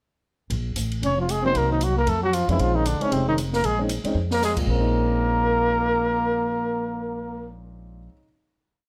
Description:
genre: jazz, small-group swing and bop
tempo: 230 BPM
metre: 4/4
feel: swing 59% on 8ths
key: Bb minor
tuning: A4 = 444 Hz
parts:
  - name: upright bass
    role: bass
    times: 0.5-8.1 s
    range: F1 to F2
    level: -29 LUFS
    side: equal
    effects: none
  - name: open jazz drum kit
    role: drums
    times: 0.5-4.6 s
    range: crash cymbal, hi-hat, kick drum, ride cymbal, snare drum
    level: -36 LUFS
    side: equal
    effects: none
  - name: growling trombone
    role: second line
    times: 1.0-7.5 s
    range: C3 to Db4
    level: -30 LUFS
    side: equal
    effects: none
  - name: warm trumpet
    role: melody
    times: 1.1-7.5 s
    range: C4 to Db5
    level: -26 LUFS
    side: equal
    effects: none
  - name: warm concert grand piano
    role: accompaniment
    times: 1.4-8.2 s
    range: Bb2 to Eb4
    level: -32 LUFS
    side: equal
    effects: none
room: moderate studio reverb, RT60 0.8 s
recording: none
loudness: -23 LUFS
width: mono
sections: 0.5-4.7 A section; 4.7-6.8 final chord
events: drum fill 4.2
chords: 0.5 Bbsus2; 1.5 Cm7b5; 2.1 F5; 2.6 Bbm11

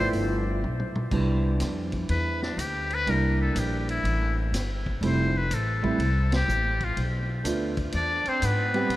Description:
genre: jazz, small-group swing and bop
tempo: 123 BPM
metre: 4/4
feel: swing 67% on 8ths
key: C major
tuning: A4 = 440 Hz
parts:
  - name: trumpet with metal mute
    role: melody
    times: 0.0-9.0 s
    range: D4 to D5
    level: -29 LUFS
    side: left 2 dB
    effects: none
  - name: warm trumpet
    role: second line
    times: 0.0-0.1, 8.0-9.0 s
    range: B3 to C5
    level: -35 LUFS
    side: right 1 dB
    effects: none
  - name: clear upright piano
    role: accompaniment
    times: 0.0-8.9 s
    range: F3 to G4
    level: -30 LUFS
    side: right 2 dB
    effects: none
  - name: upright bass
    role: bass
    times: 0.0-9.0 s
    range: F1 to A2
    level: -27 LUFS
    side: equal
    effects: none
  - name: vintage drum kit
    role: drums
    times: 0.1-9.0 s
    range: crash cymbal, hi-hat, kick drum, ride cymbal, snare drum, toms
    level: -35 LUFS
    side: equal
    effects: none
room: moderate cathedral reverb, RT60 6.1 s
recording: in a vast, echoing space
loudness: -24 LUFS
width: side -16 dB against mid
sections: 0.0-1.1 A section; 1.1-9.0 A section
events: drum fill 0.6-1.1; band accent 6.2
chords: 0.1 G13; 1.1 Cmaj9; 3.1 C7; 5.0 Fmaj7; 7.0 Bm7b5; 7.9 E

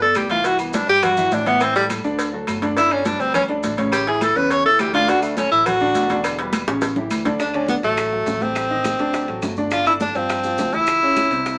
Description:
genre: Afro-Cuban jazz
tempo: 207 BPM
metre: 4/4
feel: straight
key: D major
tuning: A4 = 440 Hz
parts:
  - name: edgy tenor saxophone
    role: melody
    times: 0.0-11.6 s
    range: G3 to C#5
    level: -20 LUFS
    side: equal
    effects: none
  - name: warm grand piano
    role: accompaniment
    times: 0.0-11.6 s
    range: C3 to E5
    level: -27 LUFS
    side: equal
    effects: none
  - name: fingered electric bass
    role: bass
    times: 0.0-11.6 s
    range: E1 to A2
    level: -35 LUFS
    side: equal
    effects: none
  - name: congas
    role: percussion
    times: 0.0-11.6 s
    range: none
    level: -30 LUFS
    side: equal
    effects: none
  - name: maracas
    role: percussion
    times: 0.1-11.6 s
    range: none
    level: -40 LUFS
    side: equal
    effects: none
  - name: agogo bells and timbales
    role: percussion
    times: 0.2-11.5 s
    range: none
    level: -36 LUFS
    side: equal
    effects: none
  - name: claves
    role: percussion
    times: 0.2-11.3 s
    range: none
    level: -39 LUFS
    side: equal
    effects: none
  - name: cowbell and bongos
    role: percussion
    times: 0.2-11.6 s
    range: none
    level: -30 LUFS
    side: equal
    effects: none
room: wet club reverb, RT60 0.6 s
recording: none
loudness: -19 LUFS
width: mono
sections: 0.0-7.4 A section; 7.4-11.6 B section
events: tenor saxophone solo 0.0-7.4; drum fill 6.7-7.4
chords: 0.4 Cmaj7#11; 1.6 A5; 2.2 D; 2.8 G; 3.9 A7; 5.1 D; 6.2 Em7; 6.8 A7; 7.4 D; 8.6 Am7b5; 9.1 D7; 9.7 G7sus4; 10.9 C#dim

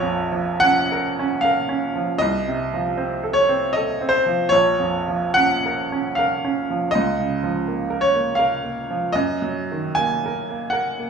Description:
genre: classical, romantic nocturne for solo piano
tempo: 64-84 BPM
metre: 3/4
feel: rubato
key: Bb minor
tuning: A4 = 439 Hz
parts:
  - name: clear baby grand piano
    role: solo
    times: 0.0-11.1 s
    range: Bb1 to Ab5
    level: -19 LUFS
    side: right 1 dB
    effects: none
room: moderate large studio reverb, RT60 1.0 s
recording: studio reverb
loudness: -18 LUFS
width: side -6 dB against mid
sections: 0.0-11.1 A section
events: none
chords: 0.0 Bbm; 2.2 F7/C; 4.5 Bbm; 6.9 Bbm/Db; 9.1 Ebm/Gb

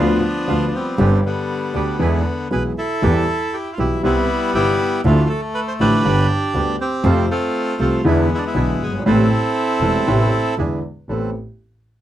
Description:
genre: tango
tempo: 119 BPM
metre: 4/4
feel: rubato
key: A minor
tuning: A4 = 440 Hz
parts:
  - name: bandoneon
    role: melody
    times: 0.0-10.6 s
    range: D3 to C5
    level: -20 LUFS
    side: equal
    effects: none
  - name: warm upright piano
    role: accompaniment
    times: 0.0-11.3 s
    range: E1 to A4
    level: -19 LUFS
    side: equal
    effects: none
  - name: bandoneon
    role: stabs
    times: 0.0-11.3 s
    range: F3 to B4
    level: -27 LUFS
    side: right 6 dB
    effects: none
  - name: clear double bass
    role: bass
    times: 0.0-11.3 s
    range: E1 to F2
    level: -21 LUFS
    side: equal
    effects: none
room: light reverb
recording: dry, close 1970s-style studio recording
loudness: -16 LUFS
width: side -12 dB against mid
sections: 0.0-11.1 A section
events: none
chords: 0.0 Bdim/D; 1.0 G; 2.0 E; 3.0 Em; 4.0 Cmaj7; 5.0 Dmadd9; 6.0 G; 7.0 F; 8.0 E7; 9.1 Amadd9; 10.6 E7; 11.1 Amadd9

